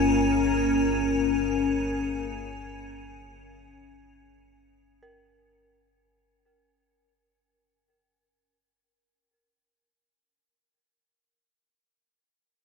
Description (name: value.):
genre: dark ambient drone.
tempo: free time.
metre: none.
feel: none.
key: unclear.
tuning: A4 = 440 Hz.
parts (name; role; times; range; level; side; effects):
sweeping resonant pad; sustained chords; 0.0-6.0 s; Bb3 to Bb4; -32 LUFS; left 1 dB; chorus.
dark detuned synth bell; arpeggios; 0.0-10.7 s; Bb4; -63 LUFS; left 1 dB; none.
deep rumbling drone; drone; 0.0-6.1 s; G1 to G2; -34 LUFS; equal; built-in reverb.
icy glass pad; texture; 0.0-6.0 s; Db4; -24 LUFS; left 2 dB; chorus, built-in reverb.
room: wet huge ambient reverb, RT60 8.9 s.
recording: in a vast, echoing space.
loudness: -23 LUFS.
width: side -4 dB against mid.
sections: 0.0-6.0 A section.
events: fade-out on analog synth pad 0.0-6.0; fade-out 0.0-6.0.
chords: 0.0 Bbm.